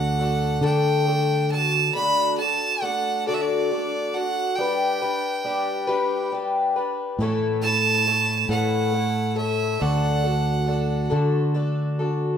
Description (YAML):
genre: folk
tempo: 46 BPM (dotted quarters)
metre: 6/8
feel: straight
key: D major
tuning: A4 = 439 Hz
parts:
  - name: bright fiddle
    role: melody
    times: 0.0-11.1 s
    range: D5 to B5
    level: -24 LUFS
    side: right 4 dB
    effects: none
  - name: picked twelve-string acoustic guitar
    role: accompaniment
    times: 0.0-12.4 s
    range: A2 to B4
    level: -24 LUFS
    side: left 3 dB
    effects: none
  - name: fingered electric bass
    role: bass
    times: 0.0-1.9, 7.2-12.4 s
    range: D2 to D3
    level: -24 LUFS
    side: right 1 dB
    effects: none
room: moderate large studio reverb, RT60 1.4 s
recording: band playing live in one room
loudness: -20 LUFS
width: side -8 dB against mid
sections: 0.0-1.9 A section; 1.9-12.4 A section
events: none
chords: 0.0 D; 4.6 G; 7.2 A; 9.8 D